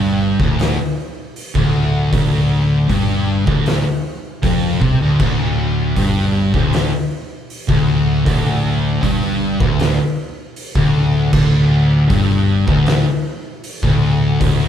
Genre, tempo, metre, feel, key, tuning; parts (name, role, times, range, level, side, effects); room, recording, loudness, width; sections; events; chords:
stoner and doom metal; 78 BPM; 4/4; straight; D minor; A4 = 439 Hz
sludgy distorted guitar; riff; 0.0-14.7 s; D2 to C3; -24 LUFS; equal; overdrive
thick fuzz guitar; riff; 0.0-14.7 s; D2 to C3; -18 LUFS; left 6 dB; distortion
thick fuzz guitar; riff; 0.0-14.7 s; D2 to C3; -19 LUFS; right 4 dB; distortion
fingered electric bass; bass; 0.0-14.7 s; D1 to C2; -21 LUFS; equal; overdrive
oversized low-tuned drum kit; drums; 0.4-14.6 s; crash cymbal, hi-hat, kick drum, snare drum; -20 LUFS; right 1 dB
moderate small room reverb, RT60 0.5 s; band playing live in one room; -14 LUFS; side -9 dB against mid
0.0-14.7 A section